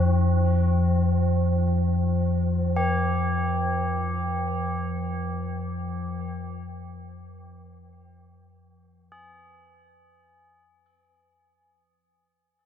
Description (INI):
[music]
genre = dark ambient drone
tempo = free time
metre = none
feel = none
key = F minor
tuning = A4 = 440 Hz
[part]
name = tubular bells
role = arpeggios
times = 0.0-11.7 s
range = C4 to Ab4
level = -30 LUFS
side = right 2 dB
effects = tape echo
[part]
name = deep rumbling drone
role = drone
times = 0.0-11.3 s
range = F2 to F3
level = -24 LUFS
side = left 1 dB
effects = built-in reverb
[sound]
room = moderate huge ambient reverb, RT60 7.8 s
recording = none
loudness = -22 LUFS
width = side -9 dB against mid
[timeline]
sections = 0.0-11.2 A section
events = fade-out 0.0-11.2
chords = 0.0 Fmadd9